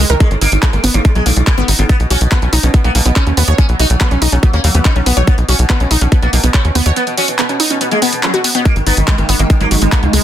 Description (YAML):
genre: psychedelic trance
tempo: 142 BPM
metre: 4/4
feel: straight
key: unclear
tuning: A4 = 440 Hz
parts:
  - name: wide unison pluck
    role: riff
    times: 0.0-10.2 s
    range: F#3 to C#5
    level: -18 LUFS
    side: moving between left 5 dB and right 6 dB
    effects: auto-pan, sidechain pumping, tape echo
  - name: tight sequencer bass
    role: bass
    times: 0.0-10.2 s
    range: G#1 to D#2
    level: -13 LUFS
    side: equal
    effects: tube saturation
  - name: sitar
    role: melody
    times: 0.1-10.1 s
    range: G#2 to D#4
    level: -20 LUFS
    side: equal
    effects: phaser, sidechain pumping, tape echo
  - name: drum and bass drum kit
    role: drums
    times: 0.1-10.2 s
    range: handclaps, hi-hat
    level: -18 LUFS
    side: equal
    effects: overdrive, studio reverb
  - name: electronic kick drum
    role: drums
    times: 0.2-10.0 s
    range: none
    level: -11 LUFS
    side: equal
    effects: studio reverb
  - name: swarming drone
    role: sustained chords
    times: 9.0-10.2 s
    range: G#3 to D#4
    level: -20 LUFS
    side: right 1 dB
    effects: built-in reverb, sidechain pumping
room: little or no reverb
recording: dense, heavily limited modern master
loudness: -10 LUFS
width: side -11 dB against mid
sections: 0.0-10.2 A section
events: none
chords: 0.0 G#5; 1.9 B5; 8.7 G#5